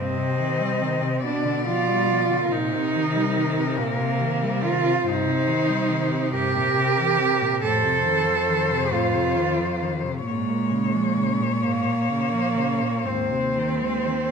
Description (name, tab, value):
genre	classical, lyrical piece for cello ensemble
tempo	40-48 BPM (dotted quarters)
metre	6/8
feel	rubato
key	unclear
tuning	A4 = 441 Hz
part	rich cello	melody	0.0-14.3 s	Bb4 to Eb5	-28 LUFS	left 7 dB	none
part	rich cello	second line	0.0-14.3 s	Ab3 to A4	-23 LUFS	right 4 dB	none
part	rich cello	accompaniment	0.0-14.3 s	G2 to Ab3	-28 LUFS	left 4 dB	none
part	rich cello	bass	0.0-14.3 s	Eb2 to C3	-28 LUFS	equal	none
room	wet recital hall reverb, RT60 1.6 s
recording	minimal, uncompressed stereo recording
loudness	-20 LUFS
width	side -6 dB against mid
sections	0.0-14.3 A section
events	none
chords	0.0 Cm/G; 1.2 G7/B; 2.5 Cm7/Bb; 5.1 Cm/G; 6.3 C7/G; 7.6 F7; 10.3 Bbm7/Ab; 13.1 Ab/Eb